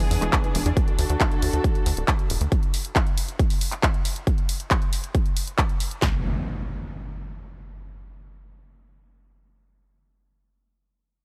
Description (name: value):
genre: uplifting trance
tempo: 137 BPM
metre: 4/4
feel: straight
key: unclear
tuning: A4 = 443 Hz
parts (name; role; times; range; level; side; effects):
- muted studio string section; sustained chords; 0.0-2.5 s; D3 to A4; -33 LUFS; equal; sidechain pumping
- analog pluck; arpeggios; 0.0-0.8 s; E3 to D4; -36 LUFS; equal; chorus, sidechain pumping, dub echo
- big-room dance drum kit; drums; 0.0-6.0 s; handclaps, hi-hat; -30 LUFS; equal; sidechain pumping on hats, sidechain pumping on perc
- impact; sound effects; 0.3-0.8, 6.0-10.6 s; none; -36 LUFS; equal; none
- tight sequencer bass; bass; 0.1-2.5 s; D1 to E2; -26 LUFS; equal; sidechain pumping
- big-room dance drum kit; drums; 0.3-6.1 s; handclaps, kick drum, snare drum; -25 LUFS; equal; none
room: little or no reverb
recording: none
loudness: -24 LUFS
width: mono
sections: 0.0-6.0 A section; 6.0-9.5 B section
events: impact 0.0-0.8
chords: 0.0 E7; 0.8 D; 2.5 N.C.